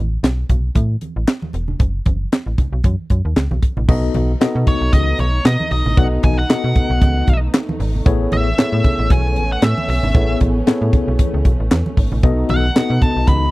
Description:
early-eighties boogie funk; 115 BPM; 4/4; swing 56% on 16ths; A4 = 442 Hz
slap-like FM bass; bass; 0.0-13.5 s; E1 to B2; -18 LUFS; equal
tight funk drum kit; drums; 0.2-13.4 s; crash cymbal, handclaps, hi-hat, kick drum, snare drum; -15 LUFS; equal
congas; percussion; 0.2-13.4 s; -27 LUFS; right 2 dB
tine electric piano; accompaniment; 3.9-13.5 s; B3 to D#5; -21 LUFS; left 4 dB; medium stereo tremolo
warm studio string section; sustained chords; 3.9-13.5 s; A3 to D#4; -27 LUFS; right 2 dB
nasal lead guitar with a parked wah; melody; 4.7-13.5 s; C#5 to B5; -22 LUFS; equal; overdrive, slapback echo
small room ambience; dry, close 1970s-style studio recording; -14 LUFS; side -19 dB against mid
0.0-3.9 A section; 3.9-13.5 B section
0.0 Asus2; 1.8 N.C.; 3.9 B7; 8.1 Amaj9; 12.2 B7
0.23 0.76 1.28 | 1.80 2.32 2.84 3.36 | 3.89 4.41 4.93 5.45 | 5.97 6.50 7.02 7.54 | 8.06 8.58 9.10 9.62 | 10.15 10.67 11.19 11.71 | 12.23 12.76 13.28

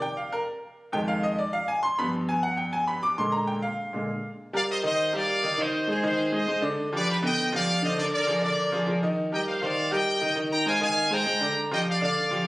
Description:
latin; 200 BPM; 4/4; straight; C minor; A4 = 441 Hz
bright upright piano; accompaniment; 0.0-12.5 s; F2 to D6; -26 LUFS; equal
brilliant trumpet section; melody; 4.5-12.4 s; G4 to Bb5; -25 LUFS; equal
wet recital hall reverb, RT60 1.4 s; recorded on a phone in the room, studio reverb; -24 LUFS; side -20 dB against mid
0.0-4.4 A section; 4.4-12.5 B section
upright piano solo 0.0-4.4
0.0 C7(no3) (rootless); 0.8 Fm7; 2.0 G7; 3.2 Bb7; 4.4 Cm7; 5.6 Ab; 6.8 G7; 8.0 Bb7; 9.2 Cm7; 10.4 Fm7; 11.6 G7(no3)
0.18 0.48 | 0.78 1.08 1.38 1.68 | 1.98 2.28 2.58 2.88 | 3.18 3.48 3.78 4.08 | 4.38 4.68 4.98 5.28 | 5.58 5.88 6.18 6.48 | 6.78 7.08 7.37 7.67 | 7.97 8.27 8.57 8.87 | 9.17 9.47 9.77 10.06 | 10.36 10.66 10.96 11.26 | 11.56 11.86 12.16 12.46

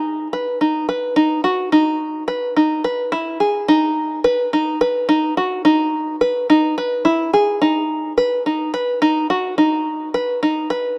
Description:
contemporary instrumental, contemporary; 214 BPM (eighths); 7/8; straight; E major; A4 = 438 Hz
open-back banjo; solo; 0.0-11.0 s; D#4 to B4; -18 LUFS; equal
moderate plate reverb, RT60 3.7 s; dark, warm production; -18 LUFS; mono
0.0-11.0 A section
0.05 0.33 0.61 0.89 | 1.17 1.45 1.73 2.01 2.29 2.57 2.85 | 3.13 3.41 3.69 3.97 4.25 4.53 4.81 | 5.09 5.37 5.66 5.93 6.21 6.50 6.78 | 7.06 7.34 7.62 7.90 8.18 8.46 8.74 | 9.02 9.30 9.58 9.86 10.14 10.43 10.71

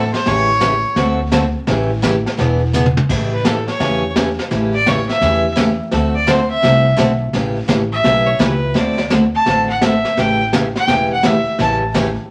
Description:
country, western swing; 169 BPM; 4/4; swing 66% on 8ths; A mixolydian; A4 = 440 Hz
clear fiddle; second line; 0.0-1.0 s; A4 to C#5; -19 LUFS; equal
picked steel-string acoustic guitar; accompaniment; 0.0-12.1 s; C#3 to A4; -21 LUFS; equal
upright bass; bass; 0.0-12.2 s; E1 to E2; -24 LUFS; equal
vintage brush drum kit; drums; 0.1-12.3 s; brushed snare drum, crash cymbal, hi-hat, kick drum, snare drum, toms; -22 LUFS; equal
clear fiddle; melody; 3.3-11.7 s; A4 to A5; -20 LUFS; equal
wet club reverb, RT60 0.8 s; vinyl crackle; -16 LUFS; mono
0.0-3.1 A section; 3.1-12.3 A section
fiddle solo 0.0-3.1, 3.1-12.3; drum fill 2.7-3.1
0.3 A7; 1.0 D7; 1.7 A7; 2.4 E7; 3.1 A7; 5.9 D9; 7.3 A9; 8.8 D9; 10.2 A7
| 0.26 0.61 0.97 1.32 | 1.68 2.03 2.38 2.74 | 3.09 3.45 3.80 4.16 | 4.51 4.86 5.22 5.57 | 5.93 6.28 6.63 6.99 | 7.34 7.70 8.05 8.41 | 8.76 9.11 9.47 9.82 | 10.18 10.53 10.88 11.24 | 11.59 11.95 12.30

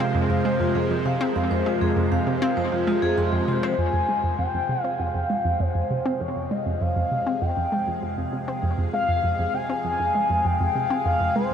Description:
ambient, sequencer-driven space music; 99 BPM; 4/4; straight; F minor; A4 = 440 Hz
evolving wavetable pad; sustained chords; 0.0-11.5 s; C3 to F5; -29 LUFS; right 1 dB; phaser, built-in reverb
vibraphone with medium mallets; arpeggios; 0.0-3.7 s; F4 to C6; -28 LUFS; left 2 dB; auto-pan, tape echo
analog pluck; riff; 0.0-11.5 s; F2 to C4; -25 LUFS; right 1 dB; chorus, tape echo
bubbling stepped-filter texture; texture; 0.0-3.8 s; C5; -37 LUFS; right 4 dB; chorus, built-in reverb
expressive synth lead; melody; 3.8-11.5 s; C5 to Ab5; -25 LUFS; left 2 dB; lush chorus, tape echo
wet huge ambient reverb, RT60 7.6 s; in a vast, echoing space; -21 LUFS; side -8 dB against mid
0.0-3.8 A section; 3.8-11.5 B section
fade-in on ambient pad 3.8-11.5; filter sweep on synth arpeggio sound 3.8-11.5
0.0 Fm; 3.8 Fmadd9
0.15 0.75 | 1.36 1.97 2.57 3.18 | 3.78 4.39 5.00 5.60 | 6.21 6.81 7.42 8.03 | 8.63 9.24 9.84 10.45 | 11.06

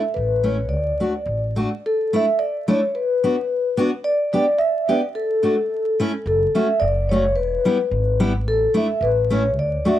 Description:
alpine folk, alpine dance band; 109 BPM; 2/4; swing 55% on 8ths; D major; A4 = 440 Hz
vibraphone with soft mallets; melody; 0.0-10.0 s; A4 to E5; -20 LUFS; left 1 dB; analog delay
upright bass; bass; 0.2-1.6, 6.3-9.8 s; E1 to D2; -23 LUFS; equal
fingerpicked steel-string acoustic guitar; accompaniment; 0.4-10.0 s; G3 to G4; -21 LUFS; equal
moderate studio reverb, RT60 0.6 s; dry, gritty hardware recording, vinyl crackle; -18 LUFS; side -12 dB against mid
0.0-1.8 A section; 1.8-10.0 A section
0.2 Aadd9; 0.7 D; 1.8 Dsus2; 2.9 Bm; 4.0 G; 5.1 D/A; 5.7 A; 6.2 F#m; 7.4 Em; 8.5 Asus4; 9.0 Aadd9
0.16 | 0.71 1.26 | 1.83 2.38 | 2.94 3.49 | 4.04 4.58 | 5.13 5.69 | 6.25 6.81 | 7.36 7.91 | 8.46 9.01 | 9.56

